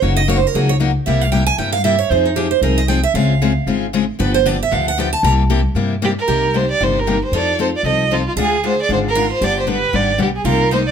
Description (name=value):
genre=acoustic string swing (jazz manouche)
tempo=230 BPM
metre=4/4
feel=swing 57% on 8ths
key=C minor from 6.3 s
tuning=A4 = 440 Hz
part: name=picked steel-string acoustic guitar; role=second line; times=0.0-10.9 s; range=Eb4 to Bb5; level=-20 LUFS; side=right 7 dB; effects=none
part: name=picked steel-string acoustic guitar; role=accompaniment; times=0.0-10.8 s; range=C3 to A4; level=-20 LUFS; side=left 6 dB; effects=none
part: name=upright bass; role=bass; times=0.0-10.9 s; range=Gb1 to G2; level=-19 LUFS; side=equal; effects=none
part: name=rich violin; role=melody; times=6.0-10.9 s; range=F4 to Eb5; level=-17 LUFS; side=right 2 dB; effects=none
room=light reverb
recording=none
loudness=-14 LUFS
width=side -7 dB against mid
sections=0.0-6.3 A section; 6.3-10.9 B section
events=steel-string acoustic guitar solo 0.0-6.3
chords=0.0 Gb6; 1.1 C7; 2.1 Fm7; 3.1 Dbmaj7; 4.2 G7; 5.2 C7; 6.3 Cm7; 7.3 F7; 8.4 Ddim; 9.4 G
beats=| 0.02 0.28 0.54 0.80 | 1.06 1.32 1.58 1.84 | 2.11 2.37 2.63 2.89 | 3.15 3.41 3.67 3.93 | 4.19 4.45 4.71 4.97 | 5.24 5.50 5.76 6.02 | 6.28 6.54 6.80 7.06 | 7.32 7.58 7.84 8.11 | 8.37 8.63 8.89 9.15 | 9.41 9.67 9.93 10.19 | 10.45 10.71